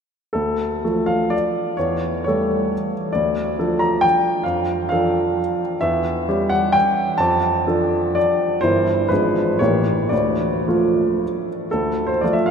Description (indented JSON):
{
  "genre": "classical, romantic triple-time dance for piano with dotted rhythms",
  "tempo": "104-145 BPM",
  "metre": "3/4",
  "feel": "rubato",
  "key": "D minor",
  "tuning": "A4 = 443 Hz",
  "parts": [
    { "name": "clear baby grand piano", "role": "solo", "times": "0.3-12.5 s", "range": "G1 to Bb5", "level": "-17 LUFS", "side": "equal", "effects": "none" }
  ],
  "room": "wet cathedral reverb, RT60 6.7 s",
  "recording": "in a vast, echoing space",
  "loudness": "-17 LUFS",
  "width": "side -6 dB against mid",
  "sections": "0.3-11.7 A section",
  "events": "none",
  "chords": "0.3 Dm; 1.8 A7/E; 3.2 Dm; 4.5 Dm/F; 5.8 C#dim/E; 7.2 Dm/F; 8.6 Edim/G; 9.1 G#dim7; 9.6 A7b9; 10.1 Dm"
}